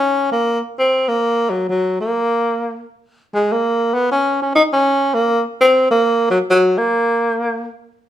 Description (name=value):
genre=jazz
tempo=201 BPM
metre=4/4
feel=swing 62% on 8ths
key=unclear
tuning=A4 = 440 Hz
part: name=breathy tenor saxophone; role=solo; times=0.0-7.7 s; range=Gb3 to Eb4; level=-14 LUFS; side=equal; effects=none
room=moderate large studio reverb, RT60 0.8 s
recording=minimal, uncompressed stereo recording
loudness=-14 LUFS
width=side -11 dB against mid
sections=0.0-8.1 A section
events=none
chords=none